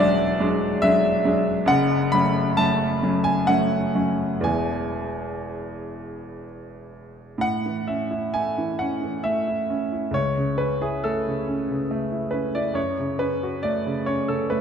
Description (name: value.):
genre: classical, romantic nocturne for solo piano.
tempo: 59-71 BPM.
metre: 3/4.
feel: rubato.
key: A major.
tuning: A4 = 441 Hz.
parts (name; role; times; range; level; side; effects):
clear baby grand piano; solo; 0.0-14.6 s; E1 to B5; -21 LUFS; equal; none.
room: moderate concert hall reverb, RT60 2.3 s.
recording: dark, warm production.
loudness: -21 LUFS.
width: side -7 dB against mid.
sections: 0.0-7.4 A section; 7.4-14.6 B section.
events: none.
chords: 0.0 E9; 1.7 F#m; 4.5 E; 7.4 A; 10.1 A/C#; 12.8 F#m.